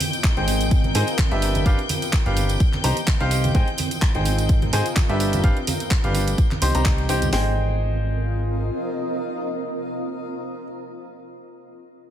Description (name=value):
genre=piano house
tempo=127 BPM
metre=4/4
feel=swing 55% on 16ths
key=Ab major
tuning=A4 = 440 Hz
part: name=clear studio violin section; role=sustained chords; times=0.0-7.3 s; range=G5 to G6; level=-31 LUFS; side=left 4 dB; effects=sidechain pumping
part: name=house drum kit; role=drums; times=0.0-7.3 s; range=handclaps, hi-hat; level=-28 LUFS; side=right 2 dB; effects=none
part: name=congas and tambourine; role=percussion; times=0.0-7.3 s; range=none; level=-30 LUFS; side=right 2 dB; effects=none
part: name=granular cloud pad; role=texture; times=0.0-10.8 s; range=Fb3 to Eb5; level=-30 LUFS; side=equal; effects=built-in reverb, sidechain pumping
part: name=house drum kit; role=drums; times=0.2-7.4 s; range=hi-hat, kick drum, snare drum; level=-19 LUFS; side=equal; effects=none
part: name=clear upright piano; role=riff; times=0.4-10.6 s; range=D4 to C6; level=-27 LUFS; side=equal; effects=sidechain pumping, tape echo
part: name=plucky analog bass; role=bass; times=0.4-8.7 s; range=G1 to Ab2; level=-22 LUFS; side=equal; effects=sidechain pumping
room=light reverb, digital ambience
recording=none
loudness=-19 LUFS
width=side -10 dB against mid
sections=0.0-7.3 A section; 7.3-11.1 B section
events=drop 0.0-7.3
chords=0.0 Abmaj7; 1.4 G7; 2.6 Cm; 3.5 Abmaj7; 5.2 G7; 6.4 Cm; 7.3 Abmaj7